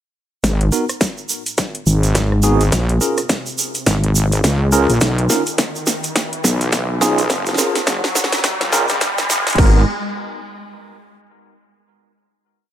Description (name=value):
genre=glitch hop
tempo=105 BPM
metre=4/4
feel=swing 59% on 16ths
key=G# dorian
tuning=A4 = 439 Hz
part: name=wobble bass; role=bass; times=0.4-9.8 s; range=F#1 to C#2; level=-16 LUFS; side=equal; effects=chorus
part: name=dubstep drum kit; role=drums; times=0.4-9.7 s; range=crash cymbal, hi-hat, rim click, snare drum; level=-22 LUFS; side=equal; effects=high-pass filter on snare, high-pass filter on hats, high-pass filter on cymbals
part: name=electronic kick drum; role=drums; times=0.4-9.7 s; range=none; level=-19 LUFS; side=equal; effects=distortion, high-pass filter on kick
part: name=tube shaker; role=percussion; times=0.4-9.6 s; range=none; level=-23 LUFS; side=right 4 dB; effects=none
part: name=riser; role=sound effects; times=1.8-9.6 s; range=none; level=-25 LUFS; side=equal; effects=none
part: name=tine electric piano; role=stabs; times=0.7-9.8 s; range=B3 to A#4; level=-21 LUFS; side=right 1 dB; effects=fast stereo tremolo, sidechain pumping, ping-pong delay
room=light reverb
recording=high-pass filter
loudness=-14 LUFS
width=side -11 dB against mid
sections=0.4-9.6 build; 9.6-11.9 final chord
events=build-up 0.4-9.6; drum fill 0.4-9.6; filter sweep 0.4-9.6; riser 1.8-9.6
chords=0.4 G#m7; 2.7 A#m7; 5.0 Badd9(#11); 7.3 F#maj7; 9.6 G#m9